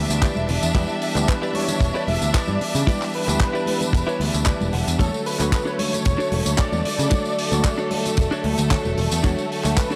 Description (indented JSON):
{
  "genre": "nu-disco, nu disco",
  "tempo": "113 BPM",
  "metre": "4/4",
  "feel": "straight",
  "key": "E dorian",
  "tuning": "A4 = 441 Hz",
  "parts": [
    { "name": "barky tine electric piano", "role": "accompaniment", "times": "0.0-10.0 s", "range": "D3 to D5", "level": "-31 LUFS", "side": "equal", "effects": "sidechain pumping, tape echo" },
    { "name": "bright symphonic violin section", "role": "sustained chords", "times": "0.0-10.0 s", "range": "A3 to E5", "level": "-31 LUFS", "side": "equal", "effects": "vintage 12-bit sampler grit, sidechain pumping" },
    { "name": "overdriven picked electric bass", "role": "bass", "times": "0.0-9.7 s", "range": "E1 to C#3", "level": "-26 LUFS", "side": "equal", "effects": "none" },
    { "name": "direct-recorded clean electric guitar", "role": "riff", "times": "0.1-10.0 s", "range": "D4 to F#5", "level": "-32 LUFS", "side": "equal", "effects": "subtle chorus, vintage 12-bit sampler grit, tape echo" },
    { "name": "damped 70s drum kit", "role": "drums", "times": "0.1-10.0 s", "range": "handclaps, hi-hat, ride cymbal, tambourine", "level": "-30 LUFS", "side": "equal", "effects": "none" },
    { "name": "kick drum", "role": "drums", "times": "0.2-9.9 s", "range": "none", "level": "-22 LUFS", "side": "equal", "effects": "none" },
    { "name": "congas", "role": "percussion", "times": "0.4-9.8 s", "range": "none", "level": "-34 LUFS", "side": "equal", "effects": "none" },
    { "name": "unison lead", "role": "melody", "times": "1.3-9.9 s", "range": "A4 to E5", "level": "-30 LUFS", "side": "equal", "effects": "tape echo" }
  ],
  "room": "light reverb, studio reverb",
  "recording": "dry, gritty hardware recording, transformer saturation",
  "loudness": "-21 LUFS",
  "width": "mono",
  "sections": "0.0-10.0 A section",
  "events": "clean electric guitar fill 3.9-5.0",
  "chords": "0.0 Em7; 5.0 Dmaj7/E"
}